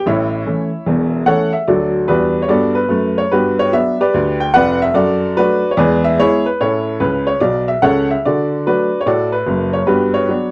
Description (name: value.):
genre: jazz, stride piano.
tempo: 146 BPM.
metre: 4/4.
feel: swing 65% on 8ths.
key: D major.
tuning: A4 = 440 Hz.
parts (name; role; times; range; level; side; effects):
clear upright piano; solo; 0.0-10.5 s; E1 to G5; -12 LUFS; equal; none.
room: light reverb.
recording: dry, close 1970s-style studio recording.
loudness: -12 LUFS.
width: side -27 dB against mid.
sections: 0.0-1.7 A section; 1.7-10.5 B section.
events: upright piano fill 7.0-8.2.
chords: 0.0 A; 1.7 D; 3.3 Gmaj7; 5.0 D/F#; 5.8 E; 6.6 A; 8.2 D; 9.9 Gmaj7.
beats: | 0.05 0.46 0.86 1.27 | 1.68 2.09 2.50 2.91 | 3.32 3.73 4.14 4.55 | 4.96 5.37 5.78 6.19 | 6.60 7.01 7.42 7.83 | 8.24 8.65 9.06 9.47 | 9.88 10.29.